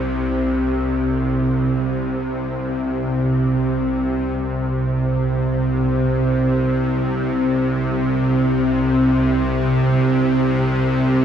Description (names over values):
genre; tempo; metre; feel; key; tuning
ambient; free time; none; none; unclear; A4 = 438 Hz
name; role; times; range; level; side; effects
bowed-like drone; solo; 0.0-11.2 s; C2 to C3; -17 LUFS; equal; built-in reverb, analog delay
room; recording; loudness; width
wet lush hall reverb, RT60 2.9 s; dreamy mix soaked in reverb; -17 LUFS; side -8 dB against mid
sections
0.0-4.4 A section; 4.4-11.2 B section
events
none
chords
none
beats
free time